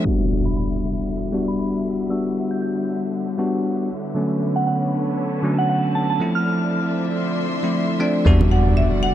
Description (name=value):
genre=deep house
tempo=117 BPM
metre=4/4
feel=swing 57% on 16ths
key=E dorian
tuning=A4 = 440 Hz
part: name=warm analog pad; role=sustained chords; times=0.0-9.1 s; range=D3 to D5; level=-29 LUFS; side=equal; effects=chorus
part: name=bell-like tine electric piano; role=stabs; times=0.0-9.1 s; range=D3 to F#4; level=-22 LUFS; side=equal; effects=ping-pong delay
part: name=bright studio string section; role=texture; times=0.0-9.1 s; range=D3 to C6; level=-31 LUFS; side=left 1 dB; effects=none
part: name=impact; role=sound effects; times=0.1-2.1, 8.3-9.1 s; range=none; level=-22 LUFS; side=equal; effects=none
part: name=soft synth bell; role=melody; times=0.5-6.9 s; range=F#5 to G6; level=-27 LUFS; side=right 2 dB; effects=chorus, ping-pong delay
part: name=marimba with medium hard mallets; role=melody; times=8.0-9.1 s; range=D5 to F#5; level=-24 LUFS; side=equal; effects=none
part: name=woody FM bass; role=bass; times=8.3-8.9 s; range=E2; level=-16 LUFS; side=equal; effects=none
part: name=congas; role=percussion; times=8.4-8.5 s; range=none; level=-26 LUFS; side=right 3 dB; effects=none
room=moderate lush hall reverb, RT60 3.3 s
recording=dark, warm production, low-pass filter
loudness=-18 LUFS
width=side -12 dB against mid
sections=0.1-8.3 A section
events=impact 0.1-2.1, 8.3-9.1; filter sweep on analog synth pad 0.1-8.3; filter sweep 0.1-8.3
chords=0.1 Em9; 3.9 Bm9; 6.2 Dm9; 8.3 Em9